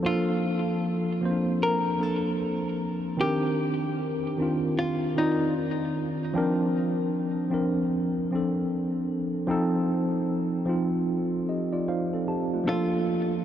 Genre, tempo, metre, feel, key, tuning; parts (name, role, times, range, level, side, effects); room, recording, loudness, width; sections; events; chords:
hip hop; 76 BPM; 4/4; swing 63% on 16ths; Bb major; A4 = 440 Hz
mellow tine electric piano; accompaniment; 0.0-13.4 s; Eb3 to A5; -25 LUFS; equal; medium stereo tremolo, cassette tape, low-pass filter
archtop guitar, miked and amplified; melody; 0.1-5.5, 12.7-13.4 s; Eb4 to Bb4; -30 LUFS; left 1 dB; low-pass filter, ping-pong delay
wet huge ambient reverb, RT60 6.9 s; dreamy mix soaked in reverb, cassette tape; -24 LUFS; side -10 dB against mid
0.0-13.4 A section
0.0 Bbmaj7; 3.2 Cm9; 6.3 C9sus4; 9.5 F7; 12.7 Bbmaj7